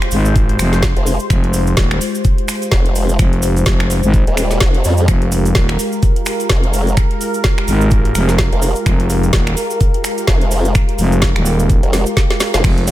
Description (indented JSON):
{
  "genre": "bass house",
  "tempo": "127 BPM",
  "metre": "4/4",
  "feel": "swing 58% on 16ths",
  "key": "F minor",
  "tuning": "A4 = 441 Hz",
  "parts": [
    { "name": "sweeping resonant pad", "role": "sustained chords", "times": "0.0-12.9 s", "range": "Ab3 to C5", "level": "-21 LUFS", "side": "left 1 dB", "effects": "lush chorus, sidechain pumping" },
    { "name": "garage drum kit", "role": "drums", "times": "0.0-12.9 s", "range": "crash cymbal, finger snaps, hi-hat, ride cymbal, snare drum", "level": "-21 LUFS", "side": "equal", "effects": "none" },
    { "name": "downlifter", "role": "sound effects", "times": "0.0-1.3 s", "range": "none", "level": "barely audible", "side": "none", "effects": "none" },
    { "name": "growling FM bass", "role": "bass", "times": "0.1-12.9 s", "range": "Eb1 to Ab1", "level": "-15 LUFS", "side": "equal", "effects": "tube saturation, sidechain pumping" },
    { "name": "cabasa", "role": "percussion", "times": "0.1-12.9 s", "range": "none", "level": "-27 LUFS", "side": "right 3 dB", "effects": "none" },
    { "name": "electronic kick drum", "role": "drums", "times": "0.4-12.8 s", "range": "none", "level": "-14 LUFS", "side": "equal", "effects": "none" },
    { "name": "formant-sweep wobble bass", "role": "bass", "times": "1.0-12.6 s", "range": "Eb1 to F2", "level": "-15 LUFS", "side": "equal", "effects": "chorus, overdrive, sidechain pumping" },
    { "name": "warm concert grand piano", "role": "stabs", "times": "12.9 s", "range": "Ab3 to C5", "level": "-19 LUFS", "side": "left 1 dB", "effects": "sidechain pumping" }
  ],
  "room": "little or no reverb",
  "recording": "none",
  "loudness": "-12 LUFS",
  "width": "side -14 dB against mid",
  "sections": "0.0-12.9 A section",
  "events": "drum fill 11.9-12.6",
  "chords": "0.0 Fmadd9"
}